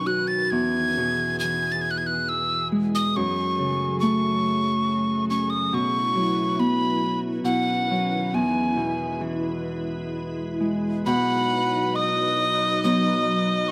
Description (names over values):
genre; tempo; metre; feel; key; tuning
celtic folk, Celtic slow air; 69 BPM; 3/4; rubato; unclear; A4 = 438 Hz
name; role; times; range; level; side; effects
breathy tin whistle; melody; 0.0-13.7 s; F#5 to A6; -27 LUFS; equal; none
Celtic harp; accompaniment; 0.0-13.7 s; E2 to F#4; -27 LUFS; equal; none
soft additive organ-like pad; sustained chords; 0.0-13.7 s; D#3 to B4; -33 LUFS; equal; ensemble chorus, built-in reverb
dark fiddle; second line; 11.1-13.7 s; D#5 to F#5; -29 LUFS; equal; none
room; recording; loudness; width
light reverb; close, detailed microphones; -24 LUFS; mono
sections
0.0-11.1 A section; 11.1-13.7 B section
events
none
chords
0.0 Badd9; 0.5 E; 3.2 F#madd9; 5.7 Bsus4; 7.5 Badd9; 8.3 E; 11.1 B